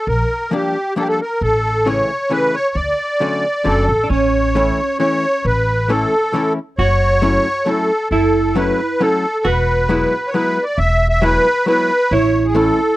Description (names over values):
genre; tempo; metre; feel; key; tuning
musette waltz; 135 BPM; 3/4; straight; D major, A major from 4.1 s; A4 = 437 Hz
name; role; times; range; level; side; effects
musette accordion; melody; 0.0-13.0 s; G4 to E5; -16 LUFS; equal; none
upright bass; bass; 0.1-12.7 s; E1 to D2; -19 LUFS; equal; none
archtop guitar, miked and amplified; accompaniment; 0.5-12.8 s; C#3 to E4; -19 LUFS; left 2 dB; none
vintage hollow-body jazz guitar; second line; 4.0-13.0 s; C#4 to F#4; -21 LUFS; right 4 dB; slapback echo
room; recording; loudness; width
little or no reverb; dry, close 1970s-style studio recording; -14 LUFS; side -16 dB against mid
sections
0.0-4.1 A section; 4.1-13.0 B section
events
none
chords
0.1 Bb6; 1.4 A; 2.8 Dmaj7; 4.1 A; 6.8 F#m7; 9.5 Eadd9; 12.1 A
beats
| 0.07 0.51 0.96 | 1.41 1.86 2.31 | 2.76 3.21 3.66 | 4.11 4.56 5.01 | 5.46 5.90 6.34 | 6.79 7.23 7.67 | 8.12 8.56 9.01 | 9.45 9.90 10.34 | 10.79 11.23 11.68 | 12.12 12.56